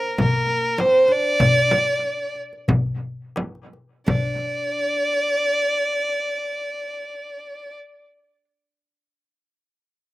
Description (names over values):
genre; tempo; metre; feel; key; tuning
Arabic maqam ensemble; 82-102 BPM; 4/4; straight; unclear; A4 = 437 Hz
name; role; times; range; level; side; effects
warm violin; melody; 0.0-7.7 s; Bb4 to D5; -21 LUFS; equal; slapback echo
oud; second line; 0.0-8.4 s; Bb3 to D4; -24 LUFS; right 3 dB; slapback echo
darbuka; percussion; 0.0-4.4 s; none; -23 LUFS; left 2 dB; none
frame drum; percussion; 0.2-4.4 s; none; -24 LUFS; equal; none
room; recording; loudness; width
little or no reverb; recorded outdoors, with no room sound; -19 LUFS; side -17 dB against mid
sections
0.0-4.1 A section; 4.1-7.0 B section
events
slowing down 0.0-4.1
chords
none